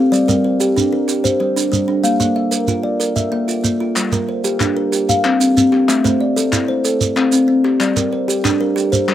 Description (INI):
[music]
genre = southern african traditional, mbira-style interlocking cycle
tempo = 125 BPM (dotted quarters)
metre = 12/8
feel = straight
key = G dorian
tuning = A4 = 440 Hz
[part]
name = kalimba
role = arpeggios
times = 0.0-9.1 s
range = G3 to F5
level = -16 LUFS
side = left 3 dB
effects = slapback echo
[part]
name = kalimba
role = arpeggios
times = 0.0-9.1 s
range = G3 to F5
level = -19 LUFS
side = right 5 dB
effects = none
[part]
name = shekere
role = percussion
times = 0.1-9.1 s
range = none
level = -21 LUFS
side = right 4 dB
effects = none
[part]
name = group handclap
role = percussion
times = 4.0-9.1 s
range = none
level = -23 LUFS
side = left 4 dB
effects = none
[sound]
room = little or no reverb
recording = recorded outdoors, with no room sound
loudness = -14 LUFS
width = side -11 dB against mid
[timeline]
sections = 0.0-9.1 A section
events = none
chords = 0.1 Gm; 2.0 Bb; 4.0 Gm; 4.9 C5; 5.9 Am; 6.8 C5; 7.8 Gm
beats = | 0.12 0.60 1.08 1.56 | 2.04 2.52 3.00 3.48 | 3.96 4.44 4.92 5.40 | 5.88 6.36 6.84 7.32 | 7.80 8.28 8.76